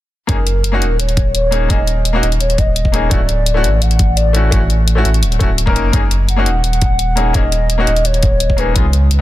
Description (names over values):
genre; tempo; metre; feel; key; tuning
liquid drum and bass; 170 BPM; 4/4; straight; F# major; A4 = 440 Hz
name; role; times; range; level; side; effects
hollow clarinet-like synth lead; melody; 0.3-8.9 s; A#4 to F#5; -20 LUFS; equal; analog chorus, digital delay
bright grand piano; accompaniment; 0.3-9.2 s; A3 to A#4; -20 LUFS; left 2 dB; ping-pong delay
warm sub bass; bass; 0.3-9.2 s; D1 to C#2; -15 LUFS; equal; none
electronic hi-hat; drums; 0.3-9.2 s; none; -22 LUFS; left 2 dB; none
electronic kick drum; drums; 0.3-8.8 s; none; -15 LUFS; equal; none
room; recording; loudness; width
digital ambience; dense, heavily limited modern master; -12 LUFS; side -15 dB against mid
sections
0.3-9.2 A section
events
none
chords
0.3 F#6; 3.1 Dmaj7; 5.8 F#6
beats
| 0.29 0.64 0.99 1.35 | 1.70 2.05 2.41 2.76 | 3.11 3.46 3.82 4.17 | 4.52 4.88 5.23 5.58 | 5.93 6.29 6.64 6.99 | 7.35 7.70 8.05 8.41 | 8.76 9.11